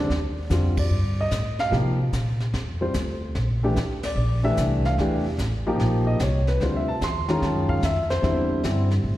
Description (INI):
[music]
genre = jazz piano trio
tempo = 148 BPM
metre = 4/4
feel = swing 66% on 8ths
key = unclear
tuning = A4 = 439 Hz
[part]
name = warm upright piano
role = melody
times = 0.0-8.9 s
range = D3 to C6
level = -24 LUFS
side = equal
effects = slapback echo
[part]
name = upright bass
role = bass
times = 0.0-9.2 s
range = A1 to C3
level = -24 LUFS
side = equal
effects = none
[part]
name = jazz brush drum kit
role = drums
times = 0.1-9.2 s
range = brushed snare drum, hi-hat, kick drum, ride cymbal, snare drum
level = -32 LUFS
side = equal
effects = none
[sound]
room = light reverb, studio reverb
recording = live gig heard through the venue's PA, recital hall reverb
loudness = -21 LUFS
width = side -15 dB against mid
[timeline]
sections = 0.0-9.2 A section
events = band accent 0.7, 4.0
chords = 0.1 Ebmaj9#11; 1.7 Cm7; 2.5 F5; 3.4 Bbmaj9#11; 5.0 Em7; 5.8 Eb; 6.6 Dm11; 7.4 F7b9b13; 8.2 Cadd9/E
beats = | 0.09 0.50 0.91 1.32 | 1.72 2.13 2.54 2.95 | 3.35 3.76 4.17 4.57 | 4.98 5.39 5.79 6.20 | 6.61 7.01 7.42 7.82 | 8.23 8.64 9.04